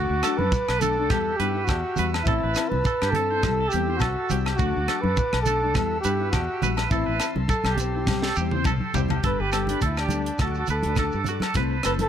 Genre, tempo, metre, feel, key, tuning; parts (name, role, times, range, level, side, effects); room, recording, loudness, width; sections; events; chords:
highlife guitar band; 103 BPM; 4/4; swing 55% on 16ths; G major; A4 = 440 Hz
warm flugelhorn; melody; 0.0-12.1 s; D4 to B4; -27 LUFS; right 1 dB
nylon-string guitar; accompaniment; 0.0-12.1 s; E3 to B4; -31 LUFS; left 8 dB
overdriven combo organ; sustained chords; 0.0-12.1 s; C5 to E6; -39 LUFS; left 1 dB
twangy electric guitar; arpeggios; 0.0-12.1 s; F#4 to C5; -30 LUFS; right 6 dB; tremolo
fingered electric bass; bass; 0.0-12.1 s; F#1 to G2; -27 LUFS; equal
tight funk drum kit; drums; 0.2-12.1 s; hi-hat, kick drum, rim click, snare drum, toms; -28 LUFS; equal
agogo bells; percussion; 0.2-12.0 s; -36 LUFS; left 9 dB
shekere; percussion; 0.2-12.0 s; -32 LUFS; right 3 dB
congas; percussion; 0.4-12.1 s; -30 LUFS; right 3 dB
little or no reverb; -21 LUFS; side -9 dB against mid
0.0-9.2 A section; 9.2-12.1 B section
drum fill 8.1-9.2
0.0 D; 1.1 Emadd9; 2.3 Am; 3.4 C; 4.6 D; 5.8 Emadd9; 6.9 Am; 8.1 C; 9.2 Gadd9; 10.4 D; 11.6 Amadd9